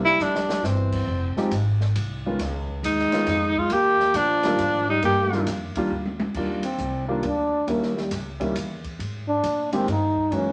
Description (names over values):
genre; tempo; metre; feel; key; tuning
jazz, small-group swing and bop; 136 BPM; 3/4; swing 65% on 8ths; Eb major; A4 = 439 Hz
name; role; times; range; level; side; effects
breathy trombone; second line; 0.0-10.5 s; E3 to Eb4; -29 LUFS; equal; none
upright bass; bass; 0.0-10.5 s; F1 to Bb2; -31 LUFS; equal; none
clear tenor saxophone; melody; 0.1-5.5 s; C4 to G4; -24 LUFS; equal; none
open jazz drum kit; drums; 0.2-10.4 s; crash cymbal, hi-hat, kick drum, ride cymbal, snare drum, toms; -37 LUFS; equal; none
warm grand piano; accompaniment; 1.4-10.5 s; Eb3 to G4; -30 LUFS; equal; none
room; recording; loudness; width
wet studio reverb, RT60 0.9 s; nothing above 10.8 kHz; -24 LUFS; mono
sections
0.0-6.4 A section; 6.4-10.5 B section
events
drum fill 0.2-0.6, 5.9-6.4; trombone solo 6.4-10.5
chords
0.0 C7; 1.1 Fm7; 2.4 Dbadd9; 3.7 Ebmaj9; 7.7 Eb7b9; 9.0 Abmaj7sus2